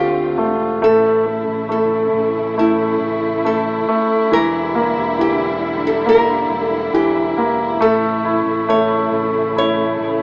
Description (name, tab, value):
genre	pop ballad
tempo	69 BPM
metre	4/4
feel	straight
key	unclear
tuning	A4 = 443 Hz
part	nylon-string guitar	melody	0.0-10.2 s	E4 to C#5	-19 LUFS	equal	none
part	clear concert grand piano	accompaniment	0.0-10.2 s	D3 to F4	-17 LUFS	equal	none
part	dark studio string section	sustained chords	0.0-10.2 s	C#3 to F4	-21 LUFS	equal	none
part	fingered electric bass	bass	0.0-10.2 s	E1 to D2	-31 LUFS	equal	none
room	moderate studio reverb, RT60 0.5 s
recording	rough home demo mix, AM radio sound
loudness	-14 LUFS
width	side -33 dB against mid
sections	0.0-10.2 A section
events	none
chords	0.0 Dm7; 0.8 A; 4.3 Em7b5; 7.8 A